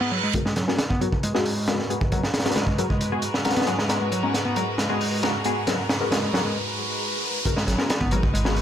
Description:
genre	breakbeat, breaks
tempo	135 BPM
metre	4/4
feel	straight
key	G# minor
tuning	A4 = 440 Hz
part	rich studio string section	sustained chords	0.0-8.6 s	G#2 to B4	-30 LUFS	equal	sidechain pumping, low-pass filter
part	overdriven picked electric bass	riff	0.0-8.6 s	F#3 to C#4	-28 LUFS	equal	tube saturation, low-pass filter, ping-pong delay
part	reverse cymbal, riser and swell	sound effects	0.0-7.5 s	none	-31 LUFS	right 3 dB	none
part	filtered dub chord stab	stabs	0.3-8.5 s	G#3 to A#4	-28 LUFS	left 3 dB	phaser, ping-pong delay
part	crunchy breakbeat drum kit	drums	0.3-8.6 s	hi-hat, kick drum, snare drum	-24 LUFS	equal	none
part	saturated sub bass	bass	7.7-8.6 s	G#1	-25 LUFS	equal	none
room	light reverb, small room ambience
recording	none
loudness	-21 LUFS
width	side -10 dB against mid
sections	0.3-7.5 A section; 7.5-8.6 B section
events	reverse cymbal 0.0-0.3; build-up 0.3-7.5; riser 0.3-7.5; filter sweep on string section 0.3-7.5; drum fill 3.9-6.6; break 6.6-7.5; swell 6.6-7.5; drop 7.5-8.6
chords	0.3 G#m9

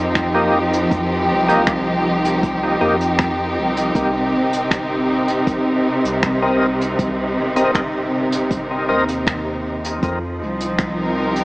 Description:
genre	ambient dub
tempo	79 BPM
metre	4/4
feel	straight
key	C minor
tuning	A4 = 440 Hz
part	clear studio string section	sustained chords	0.0-11.4 s	C3 to Bb4	-18 LUFS	equal	none
part	soft dub sub bass	bass	0.0-11.4 s	G1 to F2	-28 LUFS	equal	none
part	electronic kick drum	drums	0.2-10.9 s	none	-23 LUFS	equal	none
part	soft brush drum kit	drums	0.2-11.4 s	finger snaps, hi-hat	-25 LUFS	equal	dub echo
part	overdriven tonewheel organ	stabs	0.3-9.0 s	Bb3 to Eb5	-22 LUFS	left 1 dB	chorus vibrato, slow rotary speaker, dub echo
room	light reverb, studio reverb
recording	echo-heavy mix, small speaker sound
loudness	-16 LUFS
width	side -22 dB against mid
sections	0.0-11.4 A section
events	none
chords	0.0 F9sus4; 4.0 Cm7; 10.0 F9sus4

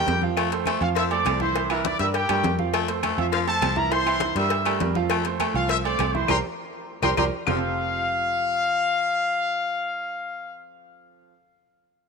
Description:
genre	latin, salsa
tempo	202 BPM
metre	4/4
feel	straight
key	F major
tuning	A4 = 439 Hz
part	bright trumpet section	melody	0.0-10.6 s	G4 to E6	-25 LUFS	left 2 dB	none
part	raspy baritone saxophone	second line	0.0-7.6 s	E3 to A3	-30 LUFS	left 11 dB	slapback echo
part	clear concert grand piano	accompaniment	0.0-11.3 s	E3 to F5	-28 LUFS	right 12 dB	none
part	fingered electric bass	bass	0.0-11.3 s	F1 to G2	-29 LUFS	left 1 dB	none
part	congas	percussion	0.1-7.5 s	none	-34 LUFS	left 11 dB	none
part	cowbell and bongos	percussion	0.1-7.5 s	none	-33 LUFS	left 14 dB	none
part	timbales and agogo bells	percussion	0.1-7.5 s	none	-32 LUFS	right 12 dB	none
part	claves	percussion	0.4-7.5 s	none	-33 LUFS	left 13 dB	none
room	moderate plate reverb, RT60 3.1 s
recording	1960s-style stereo with parts hard left and right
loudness	-21 LUFS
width	side -5 dB against mid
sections	0.0-7.5 A section; 7.5-9.8 B section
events	drum fill 6.3-7.5; band accent 6.3-7.5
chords	0.4 F; 1.6 C7; 2.7 F; 3.9 C7; 5.1 F; 6.3 C5; 7.5 Fadd9

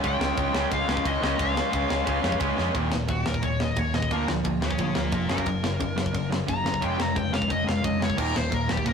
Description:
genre	punk rock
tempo	177 BPM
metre	4/4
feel	straight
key	unclear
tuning	A4 = 440 Hz
part	cranked stack guitar	riff	0.0-8.9 s	Eb2 to Db4	-29 LUFS	left 6 dB	overdrive
part	crunchy overdriven guitar	riff	0.0-8.9 s	Eb2 to Db4	-30 LUFS	right 8 dB	none
part	picked electric bass	bass	0.0-8.9 s	Eb1 to F2	-30 LUFS	equal	none
part	tight metal drum kit	drums	0.0-8.9 s	crash cymbal, kick drum, ride cymbal, snare drum	-30 LUFS	equal	none
part	smooth overdriven lead guitar	melody	0.1-8.9 s	F4 to Bb5	-30 LUFS	left 2 dB	none
room	light reverb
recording	rough rehearsal-room recording, warm saturation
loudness	-23 LUFS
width	side -6 dB against mid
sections	0.0-2.8 A section; 2.8-8.9 B section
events	drum fill 2.6; lead electric guitar solo 2.8-8.9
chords	0.0 Db; 2.8 Eb5; 4.1 Bb/D; 5.3 Gb; 6.8 Db/F; 8.2 Eb5

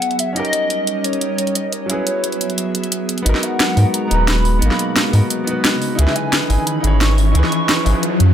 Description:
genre	liquid drum and bass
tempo	176 BPM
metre	4/4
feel	straight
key	G# minor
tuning	A4 = 440 Hz
part	hollow clarinet-like synth lead	melody	0.0-8.0 s	C#5 to C#6	-23 LUFS	equal	phaser, ensemble chorus, cassette tape, ping-pong delay
part	clear concert grand piano	accompaniment	0.0-8.3 s	F#3 to C#5	-23 LUFS	right 1 dB	digital delay
part	airy breathy pad	sustained chords	0.0-8.3 s	E3 to E5	-24 LUFS	equal	chorus
part	drum and bass drum kit	drums	0.0-8.3 s	hi-hat, snare drum	-20 LUFS	equal	overdrive
part	warm sub bass	bass	3.3-8.3 s	D#1 to G#2	-14 LUFS	equal	none
part	riser	sound effects	5.0-8.3 s	none	-24 LUFS	left 2 dB	none
room	light reverb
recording	none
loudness	-15 LUFS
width	side -9 dB against mid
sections	0.0-3.3 A section; 3.3-8.3 B section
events	build-up 3.3-8.3; filter sweep on analog synth pad 3.3-8.3; riser 5.0-8.3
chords	0.4 D#7; 1.9 F#9sus4; 3.3 G#m7; 6.0 C#m9

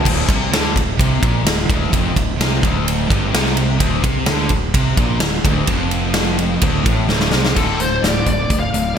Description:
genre	hard rock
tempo	128 BPM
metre	4/4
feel	straight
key	D minor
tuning	A4 = 440 Hz
part	sludgy distorted guitar	riff	0.0-8.9 s	D2 to D3	-22 LUFS	right 9 dB	overdrive
part	tight distorted guitar	riff	0.0-9.0 s	D2 to D3	-22 LUFS	left 10 dB	distortion
part	fuzz fingered electric bass	bass	0.1-8.9 s	D1 to D2	-22 LUFS	equal	overdrive
part	big rock drum kit	drums	0.1-8.8 s	crash cymbal, hi-hat, kick drum, ride cymbal, snare drum	-18 LUFS	equal	gated reverb
part	bluesy overdriven lead guitar	melody	7.6-9.0 s	A4 to F5	-22 LUFS	left 2 dB	distortion, ping-pong delay
room	light reverb, small room reverb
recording	bright 1980s-style digital production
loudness	-14 LUFS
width	side -8 dB against mid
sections	0.0-7.6 A section; 7.6-9.0 B section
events	drum fill 7.1-7.6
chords	0.0 Dm; 7.6 D5

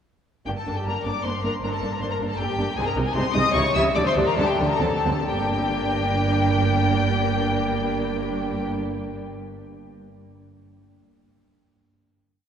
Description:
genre	quick classical-period movement for string orchestra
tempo	130-159 BPM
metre	3/4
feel	straight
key	G minor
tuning	A4 = 440 Hz
part	clear studio violin section	melody	0.5-8.8 s	G5 to E6	-27 LUFS	left 4 dB	none
part	rich studio violin section	second line	0.5-8.8 s	G4 to E5	-28 LUFS	left 2 dB	none
part	rich chamber viola section	accompaniment	0.5-8.8 s	F#3 to E4	-27 LUFS	equal	none
part	rich chamber double bass section	bass	0.5-8.8 s	G1 to D2	-29 LUFS	right 3 dB	none
part	warm chamber cello section	bass	0.5-8.8 s	G2 to D3	-28 LUFS	right 2 dB	none
room	wet church reverb, RT60 3.5 s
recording	worn, warbling old tape, cassette tape, warbly pitch drift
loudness	-21 LUFS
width	side -8 dB against mid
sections	0.5-5.3 A section; 5.3-8.0 final chord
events	slowing down 2.2-5.3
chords	0.5 Gm; 2.8 Ab/C; 3.5 C#dim; 4.0 Dsus4; 4.8 D7; 5.3 Gm

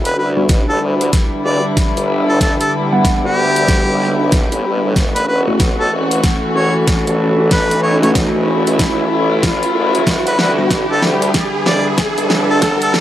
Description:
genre	glitch hop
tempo	94 BPM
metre	4/4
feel	swing 62% on 16ths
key	E dorian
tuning	A4 = 439 Hz
part	dark chamber string section	sustained chords	0.0-13.0 s	D3 to F#5	-19 LUFS	left 2 dB	sidechain pumping
part	formant-sweep wobble bass	bass	0.0-12.8 s	E1 to D2	-20 LUFS	equal	chorus, high-pass filter
part	riser	sound effects	3.2-13.0 s	none	-23 LUFS	right 2 dB	none
part	airy breathy pad	texture	0.0-13.0 s	G3 to E5	-22 LUFS	equal	chorus, sidechain pumping
part	warm harmonica	melody	0.1-12.9 s	G4 to D5	-20 LUFS	equal	tape echo
part	dubstep drum kit	drums	0.1-13.0 s	hi-hat, snare drum	-19 LUFS	equal	overdrive
part	bell-like tine electric piano	stabs	0.4-10.7 s	G3 to F#5	-20 LUFS	equal	phaser, sidechain pumping, low-pass filter, tape echo
part	electronic kick drum	drums	0.5-12.8 s	none	-17 LUFS	equal	overdrive
room	little or no reverb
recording	dry, gritty hardware recording, cassette tape, high-pass filter, lossy compression artefacts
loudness	-12 LUFS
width	side -12 dB against mid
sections	0.0-13.0 A section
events	build-up 0.0-13.0; drum fill 0.0-13.0; filter sweep 0.0-13.0; riser 3.2-13.0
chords	0.0 Em7; 5.0 F#m7; 10.1 Em7

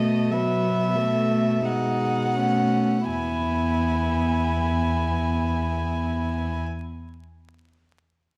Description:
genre	classical, slow romantic movement for string quartet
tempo	40-48 BPM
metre	3/4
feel	rubato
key	E major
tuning	A4 = 440 Hz
part	warm violin	melody	0.0-6.6 s	D#5 to G#5	-31 LUFS	equal	none
part	warm violin	second line	0.0-6.6 s	A3 to E4	-32 LUFS	equal	none
part	warm viola	accompaniment	0.0-6.6 s	F#3 to B3	-29 LUFS	equal	none
part	warm cello	bass	0.0-6.6 s	E2 to B2	-29 LUFS	equal	none
room	wet recital hall reverb, RT60 1.5 s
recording	dark, warm production, vinyl crackle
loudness	-24 LUFS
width	mono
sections	0.0-3.1 A section; 3.1-7.3 B section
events	slowing down 0.0-3.1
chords	0.0 B7sus4; 1.6 B13; 3.1 E

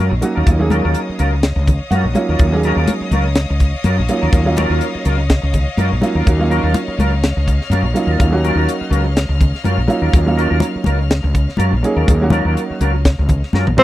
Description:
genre	electric jazz fusion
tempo	124 BPM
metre	4/4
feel	swing 56% on 16ths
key	Eb minor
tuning	A4 = 444 Hz
part	clear studio string section	sustained chords	0.0-13.8 s	Db5 to F6	-28 LUFS	left 3 dB	none
part	mellow electric guitar	stabs	0.0-13.8 s	Gb3 to Bb4	-22 LUFS	equal	analog chorus
part	woody fretless electric bass	bass	0.0-13.8 s	Bb1 to Gb2	-16 LUFS	equal	none
part	dark grand piano	accompaniment	0.2-13.8 s	Gb3 to Gb5	-19 LUFS	right 2 dB	none
part	tight funk drum kit	drums	0.2-13.8 s	hi-hat, kick drum, snare drum, toms	-16 LUFS	equal	none
part	congas	percussion	0.5-13.8 s	none	-21 LUFS	left 2 dB	none
part	breathy tenor saxophone	melody	13.8 s	C4	-6 LUFS	equal	none
room	little or no reverb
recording	dry, close 1970s-style studio recording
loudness	-13 LUFS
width	side -15 dB against mid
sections	0.0-13.8 A section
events	grand piano fill 1.7-2.4; drum fill 13.5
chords	0.0 Ebm9

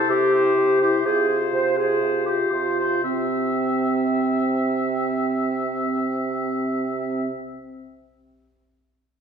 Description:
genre	quick classical-period movement for wind quintet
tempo	111-127 BPM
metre	4/4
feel	rubato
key	C major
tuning	A4 = 439 Hz
part	warm oboe	second line	0.0-7.3 s	C5 to E5	-27 LUFS	left 2 dB	none
part	warm French horn	accompaniment	0.0-7.3 s	C4 to F4	-29 LUFS	left 3 dB	none
part	warm clarinet	accompaniment	0.0-7.3 s	C4 to C5	-23 LUFS	right 2 dB	none
part	mellow bassoon	bass	0.0-7.3 s	C3	-28 LUFS	right 2 dB	none
room	wet recital hall reverb, RT60 1.8 s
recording	recorded in a church or concert hall, faint mains hum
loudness	-20 LUFS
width	side -7 dB against mid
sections	0.0-3.0 A section; 3.0-7.1 B section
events	slowing down 0.0-3.0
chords	0.0 C; 1.1 Fm/C; 3.0 C

